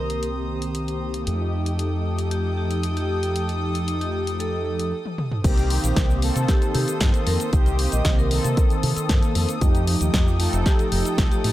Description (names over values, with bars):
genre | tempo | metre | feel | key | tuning
nu-disco, nu disco | 115 BPM | 4/4 | straight | C dorian | A4 = 438 Hz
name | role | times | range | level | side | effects
vibraphone with medium mallets | melody | 0.0-11.5 s | G4 to Eb5 | -31 LUFS | equal | tape echo
mellow synth brass | accompaniment | 0.0-11.5 s | Eb3 to A4 | -27 LUFS | equal | chorus, analog delay
rich chamber string section | sustained chords | 0.0-11.5 s | A4 to Eb6 | -33 LUFS | left 1 dB | sidechain pumping
fingered electric bass with an envelope filter | bass | 0.0-11.5 s | F1 to C3 | -24 LUFS | equal | none
house drum kit | drums | 0.1-11.5 s | crash cymbal, hi-hat, shaker, snare drum, toms | -28 LUFS | left 1 dB | none
electronic kick drum | drums | 5.4-11.3 s | none | -20 LUFS | equal | none
room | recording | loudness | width
digital ambience | none | -20 LUFS | side -15 dB against mid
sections
0.0-5.4 A section; 5.4-11.5 B section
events
drum fill 5.1-5.4; drop 5.4-11.5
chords
0.0 Cm7; 1.3 F9; 5.4 Cm7; 9.6 F9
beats
0.23 0.75 | 1.27 1.79 2.31 2.83 | 3.36 3.88 4.40 4.92 | 5.44 5.97 6.49 7.01 | 7.53 8.05 8.57 9.10 | 9.62 10.14 10.66 11.18